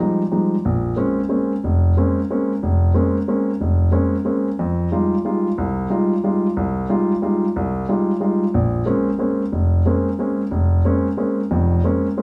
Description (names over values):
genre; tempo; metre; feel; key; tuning
jazz; 182 BPM; 3/4; swing 64% on 8ths; unclear; A4 = 438 Hz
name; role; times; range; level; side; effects
warm grand piano; solo; 0.0-12.2 s; F1 to F4; -19 LUFS; equal; none
room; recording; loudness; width
wet large studio reverb, RT60 1.1 s; band playing live in one room; -19 LUFS; mono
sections
0.0-12.2 A section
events
none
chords
0.0 Fm9; 0.6 Bbm9; 4.6 Fm9; 8.5 Bbm9